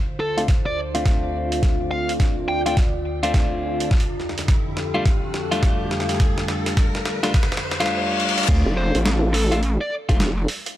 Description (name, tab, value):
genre	glitch hop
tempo	105 BPM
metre	4/4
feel	swing 63% on 16ths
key	D minor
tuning	A4 = 441 Hz
part	warbly tape-like pad	sustained chords	0.1-7.9 s	D2 to D5	-28 LUFS	equal	chorus, built-in reverb, sidechain pumping
part	riser and reverse cymbal	sound effects	1.4-8.5 s	none	-30 LUFS	left 2 dB	none
part	bluesy overdriven lead guitar	melody	0.2-2.7, 8.8-9.9 s	A4 to G5	-28 LUFS	equal	distortion, tape echo
part	clean electric guitar	stabs	0.4-10.2 s	G3 to F4	-26 LUFS	left 1 dB	sidechain pumping, low-pass filter, tape echo
part	boom bap sampler-style drum kit	drums	0.4-10.7 s	crash cymbal, hi-hat, snare drum	-28 LUFS	right 1 dB	high-pass filter on hats, studio reverb, high-pass filter on toms, high-pass filter on snare, high-pass filter on cymbals
part	electronic kick drum	drums	0.5-10.2 s	none	-19 LUFS	equal	studio reverb
part	gritty driven synth bass	bass	8.5-8.6 s	D2	-19 LUFS	equal	overdrive
part	vowel-sweep wobble bass	bass	8.7-10.5 s	F1 to A1	-20 LUFS	equal	chorus
room	light reverb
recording	none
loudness	-18 LUFS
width	side -13 dB against mid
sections	0.0-8.5 A section; 8.5-10.8 B section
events	build-up 0.0-8.5; drum fill 0.0-7.9, 8.2; filter sweep on clean electric guitar 0.0-8.5; riser 1.4-8.5; reverse cymbal 7.3-8.5; drop 8.5-10.8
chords	0.0 Dm7; 3.9 F69; 8.5 Dm7